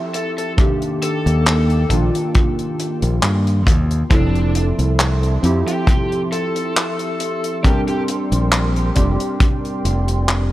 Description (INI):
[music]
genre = vaporwave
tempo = 68 BPM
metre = 4/4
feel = swing 54% on 16ths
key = F major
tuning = A4 = 440 Hz
[part]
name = warbly lo-fi synth keys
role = accompaniment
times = 0.0-10.5 s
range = Eb3 to Bb4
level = -22 LUFS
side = equal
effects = lush chorus, vintage 12-bit sampler grit, analog delay
[part]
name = warbly tape-like pad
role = sustained chords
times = 0.0-10.5 s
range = Bb3 to D6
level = -29 LUFS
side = right 1 dB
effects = chorus, built-in reverb, phaser
[part]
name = lead guitar through a small cranked amp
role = melody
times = 0.1-8.0 s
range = D4 to A4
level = -26 LUFS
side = left 1 dB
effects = overdrive, tape echo
[part]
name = modern studio drum kit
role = drums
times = 0.1-10.5 s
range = handclaps, hi-hat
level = -22 LUFS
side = equal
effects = none
[part]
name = kick drum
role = drums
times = 0.6-9.6 s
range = none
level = -16 LUFS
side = equal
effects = none
[part]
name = modern bright fingered electric bass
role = bass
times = 1.3-10.5 s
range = F1 to G2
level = -17 LUFS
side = equal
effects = none
[sound]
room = light reverb, studio reverb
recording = cassette tape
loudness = -15 LUFS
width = side -15 dB against mid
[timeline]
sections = 0.0-10.5 A section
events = none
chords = 0.0 Fmaj7; 0.6 Ebmaj7; 4.1 Fmaj7; 7.6 Bb69